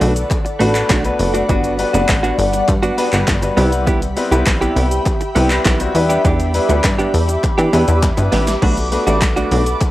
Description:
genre	dance-pop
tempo	101 BPM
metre	4/4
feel	straight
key	unclear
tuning	A4 = 437 Hz
part	clear baby grand piano	accompaniment	0.0-9.9 s	G3 to D5	-21 LUFS	left 3 dB	sidechain pumping, cassette tape
part	ethereal airy pad	sustained chords	0.0-9.9 s	G3 to D6	-21 LUFS	left 1 dB	ensemble chorus, built-in reverb, sidechain pumping, cassette tape
part	direct-recorded clean electric guitar	riff	0.0-9.8 s	A3 to G4	-19 LUFS	right 3 dB	wide subtle chorus, cassette tape
part	plucky analog bass	bass	0.0-9.7 s	F#1 to E3	-17 LUFS	equal	sidechain pumping
part	punchy analog drum machine	drums	0.0-9.9 s	crash cymbal, handclaps, hi-hat, kick drum, shaker, snare drum	-19 LUFS	equal	overdrive
part	group handclap	percussion	0.3-9.9 s	none	-28 LUFS	left 3 dB	none
room	light reverb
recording	home recording on cassette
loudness	-13 LUFS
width	side -16 dB against mid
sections	0.0-9.9 A section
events	drum fill 8.0-8.6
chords	0.0 Bm7; 1.5 Gmaj7; 3.6 Cmaj7; 6.0 Em7; 8.6 Bm7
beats	0.31 0.90 | 1.50 2.09 2.68 3.28 | 3.87 4.46 5.06 5.65 | 6.25 6.84 7.43 8.03 | 8.62 9.22 9.81

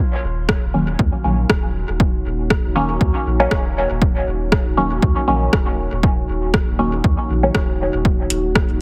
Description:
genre	dub techno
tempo	119 BPM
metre	4/4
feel	swing 55% on 16ths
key	Eb minor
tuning	A4 = 440 Hz
part	deep dark ambient pad	sustained chords	0.8-8.8 s	Bb3 to Gb5	-29 LUFS	equal	chorus, built-in reverb, sidechain pumping
part	soft dub sub bass	bass	0.2-8.8 s	Eb1 to Eb2	-25 LUFS	equal	tube saturation, sidechain pumping
part	deep house drum kit	drums	0.5-8.7 s	hi-hat, rim click	-26 LUFS	equal	overdrive, dub echo
part	electronic kick drum	drums	0.5-8.7 s	none	-20 LUFS	equal	overdrive
part	filtered dub chord stab	stabs	0.7-7.6 s	Eb3 to Db4	-23 LUFS	equal	chorus, phaser, cassette tape, sidechain pumping, dub echo
room	light reverb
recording	heavily compressed radio sound, multiband compression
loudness	-18 LUFS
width	mono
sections	0.0-8.8 A section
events	none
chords	0.0 Ebm7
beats	0.49 0.99 1.50 | 2.00 2.50 3.01 3.51 | 4.02 4.52 5.03 5.53 | 6.03 6.54 7.04 7.55 | 8.05 8.55

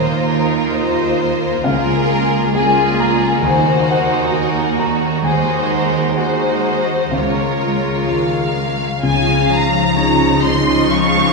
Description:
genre	cinematic, emotional film score for orchestra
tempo	62-68 BPM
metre	4/4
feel	rubato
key	unclear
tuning	A4 = 439 Hz
part	rich symphonic violin section	melody	0.0-11.3 s	Gb4 to Db6	-21 LUFS	left 2 dB	none
part	rich studio violin section	second line	0.0-11.3 s	F4 to F5	-22 LUFS	left 1 dB	none
part	clear symphonic viola section	accompaniment	0.0-11.3 s	F3 to F4	-22 LUFS	right 4 dB	none
part	felt-muted upright piano	accompaniment	0.0-11.3 s	Db2 to Bb5	-20 LUFS	left 2 dB	none
part	concert harp	arpeggios	0.0-11.3 s	Db3 to Eb5	-23 LUFS	left 8 dB	none
part	rich symphonic cello section	bass	0.0-11.3 s	Db2 to Db3	-22 LUFS	right 6 dB	none
part	rich symphonic double bass section	bass	9.0-11.3 s	Db2	-24 LUFS	right 2 dB	none
room	wet recital hall reverb, RT60 1.7 s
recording	recorded in a church or concert hall, studio reverb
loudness	-13 LUFS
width	side -2 dB against mid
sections	0.0-9.0 A section; 9.0-11.3 B section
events	none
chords	0.0 Ebsus2; 1.6 Bbm7/Db; 3.4 Ebm; 5.2 Ab7/Eb; 7.1 Db6; 9.0 Dbadd9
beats	0.74 | 1.65 2.54 3.44 4.33 | 5.24 6.17 7.13 8.08 | 9.04 9.98 10.90

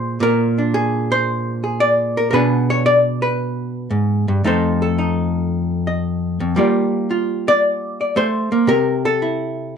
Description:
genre	solo jazz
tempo	113 BPM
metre	4/4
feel	swing 69% on 8ths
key	F mixolydian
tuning	A4 = 440 Hz
part	archtop guitar, miked and amplified	solo	0.0-9.8 s	F2 to Eb5	-16 LUFS	equal	none
room	moderate studio ambience, RT60 0.5 s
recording	dark, warm production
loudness	-16 LUFS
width	side -7 dB against mid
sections	0.0-9.8 A section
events	none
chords	0.0 Bb7; 2.3 Bm6; 4.4 F7; 6.6 Gm7; 8.7 C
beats	| 0.21 0.74 1.27 1.80 | 2.33 2.86 3.39 3.92 | 4.45 4.98 5.51 6.04 | 6.57 7.10 7.63 8.16 | 8.69 9.22 9.76

